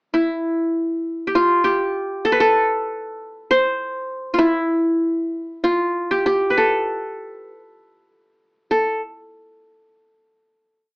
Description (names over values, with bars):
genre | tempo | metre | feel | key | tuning
turkish | 195 BPM (eighths) | 7/8 | straight | A makam nihavent | A4 = 441 Hz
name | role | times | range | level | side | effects
qanun | solo | 0.1-9.0 s | E4 to C5 | -18 LUFS | equal | none
room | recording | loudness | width
light reverb | AM radio sound | -17 LUFS | side -30 dB against mid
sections
0.1-8.7 A section; 8.7-10.9 final note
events
none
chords
none